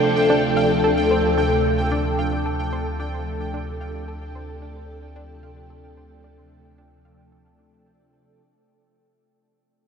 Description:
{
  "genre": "ambient, sequencer-driven space music",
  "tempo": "111 BPM",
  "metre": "4/4",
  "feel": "straight",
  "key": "D minor",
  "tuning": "A4 = 440 Hz",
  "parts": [
    { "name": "phased string machine", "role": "sustained chords", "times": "0.0-8.4 s", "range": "C3 to A4", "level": "-21 LUFS", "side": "left 1 dB", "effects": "ensemble chorus, phaser" },
    { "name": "round analog bass", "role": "bass", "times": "0.0-8.4 s", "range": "D2", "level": "-30 LUFS", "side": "equal", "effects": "none" },
    { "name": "pulsing gated texture", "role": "texture", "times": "0.0-8.4 s", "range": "G5", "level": "-29 LUFS", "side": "right 3 dB", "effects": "chorus, built-in reverb" },
    { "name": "analog pluck", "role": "riff", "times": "0.3-8.3 s", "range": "D4 to F5", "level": "-29 LUFS", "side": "right 2 dB", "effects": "chorus, tape echo" }
  ],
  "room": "wet huge ambient reverb, RT60 7.7 s",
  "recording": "dark, warm production",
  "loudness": "-19 LUFS",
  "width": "side -6 dB against mid",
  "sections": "0.0-8.4 A section",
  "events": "fade-out on synth arpeggio sound 0.0-8.4; fade-out 0.0-8.4",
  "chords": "0.0 Dm7",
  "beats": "0.29 0.83 1.38 | 1.92 2.46 3.00 3.54 | 4.08 4.62 5.16 5.70 | 6.24 6.78 7.32 7.86"
}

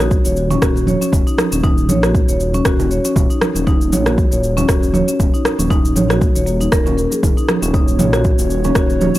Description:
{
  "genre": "afro house",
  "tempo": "118 BPM",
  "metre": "4/4",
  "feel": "swing 55% on 16ths",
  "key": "Eb minor",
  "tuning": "A4 = 440 Hz",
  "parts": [
    { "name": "marimba with medium mallets", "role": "arpeggios", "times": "0.0-9.2 s", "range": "Bb3 to Db5", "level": "-19 LUFS", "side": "left 1 dB", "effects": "sidechain pumping, analog delay" },
    { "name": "dark detuned saw bass", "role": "bass", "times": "0.0-9.1 s", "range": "Eb1 to Bb1", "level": "-19 LUFS", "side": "equal", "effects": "tube saturation, sidechain pumping" },
    { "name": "deep house drum kit", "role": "drums", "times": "0.0-9.2 s", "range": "cabasa, rim click, toms", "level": "-22 LUFS", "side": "equal", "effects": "overdrive" },
    { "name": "electronic kick drum", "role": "drums", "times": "0.1-8.9 s", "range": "none", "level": "-16 LUFS", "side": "equal", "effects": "overdrive" },
    { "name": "congas", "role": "percussion", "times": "0.2-9.2 s", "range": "none", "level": "-22 LUFS", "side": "right 4 dB", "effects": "none" },
    { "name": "dark analog pad", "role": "sustained chords", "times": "7.2-9.2 s", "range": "Bb3 to Db5", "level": "-23 LUFS", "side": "equal", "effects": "chorus, sidechain pumping" }
  ],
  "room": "little or no reverb",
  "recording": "dry, gritty hardware recording",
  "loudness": "-13 LUFS",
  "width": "side -15 dB against mid",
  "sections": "0.0-9.2 A section",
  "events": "none",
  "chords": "0.0 Ebm7",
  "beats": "0.11 0.62 | 1.13 1.64 2.15 2.66 | 3.16 3.67 4.18 4.69 | 5.20 5.71 6.21 6.72 | 7.23 7.74 8.25 8.76"
}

